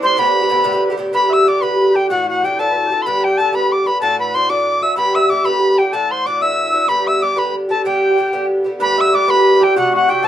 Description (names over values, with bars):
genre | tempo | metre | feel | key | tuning
celtic folk, Celtic jig | 125 BPM (dotted quarters) | 6/8 | straight | G major | A4 = 436 Hz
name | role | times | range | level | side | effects
reedy tin whistle | melody | 0.0-10.3 s | F#5 to E6 | -16 LUFS | equal | none
hammered dulcimer | second line | 0.0-2.9, 8.8-10.3 s | F#4 to E5 | -23 LUFS | right 4 dB | none
mellow accordion | second line | 0.0-10.3 s | F#4 to E5 | -21 LUFS | left 3 dB | none
Irish bouzouki | accompaniment | 0.0-10.3 s | G2 to G4 | -17 LUFS | right 1 dB | none
room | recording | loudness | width
moderate studio reverb, RT60 0.5 s | minimal, uncompressed stereo recording, lossy compression artefacts | -13 LUFS | side -11 dB against mid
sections
0.0-1.1 A section; 1.1-8.8 B section; 8.8-10.3 B section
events
none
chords
0.2 Gadd9; 1.1 G; 2.1 Dadd9; 3.1 G; 4.0 Dadd9; 5.0 G; 5.9 Dadd9; 6.9 G; 9.8 F#m7b5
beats
| 0.18 0.66 | 1.14 1.62 | 2.10 2.58 | 3.06 3.54 | 4.02 4.50 | 4.98 5.46 | 5.94 6.42 | 6.90 7.38 | 7.85 8.33 | 8.81 9.29 | 9.76 10.24